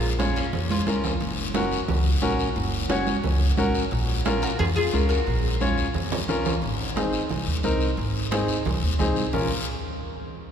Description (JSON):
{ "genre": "latin, cumbia", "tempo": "177 BPM", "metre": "4/4", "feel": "straight", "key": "Bb minor", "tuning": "A4 = 439 Hz", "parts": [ { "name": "oud", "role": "melody", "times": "0.0-1.0, 4.4-6.2 s", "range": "Bb3 to Bb4", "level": "-30 LUFS", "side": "left 3 dB", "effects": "none" }, { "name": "upright bass", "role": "bass", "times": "0.0-9.5 s", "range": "Gb1 to F2", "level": "-26 LUFS", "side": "equal", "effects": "none" }, { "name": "clear upright piano", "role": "accompaniment", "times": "0.2-9.5 s", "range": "C4 to Db5", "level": "-27 LUFS", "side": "left 1 dB", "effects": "none" }, { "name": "congas", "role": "percussion", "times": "0.2-9.4 s", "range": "none", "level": "-29 LUFS", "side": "right 3 dB", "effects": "none" }, { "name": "guiro", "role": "percussion", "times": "0.2-9.4 s", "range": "none", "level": "-33 LUFS", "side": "left 5 dB", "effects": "none" } ], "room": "wet cathedral reverb, RT60 5.0 s", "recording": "recorded in a church or concert hall", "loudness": "-22 LUFS", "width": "side -8 dB against mid", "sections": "0.0-6.6 A section; 6.6-9.3 B section; 9.3-10.5 C section", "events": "drum fill 0.7-1.2, 5.6-6.6", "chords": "0.0 Bbm; 1.2 Gb; 3.9 Bbm; 6.6 Ab; 9.3 Bbm", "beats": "0.19 0.53 0.87 | 1.21 1.55 1.89 2.22 | 2.56 2.90 3.24 3.58 | 3.92 4.25 4.59 4.93 | 5.27 5.61 5.95 6.29 | 6.62 6.96 7.30 7.64 | 7.98 8.32 8.66 8.99 | 9.33" }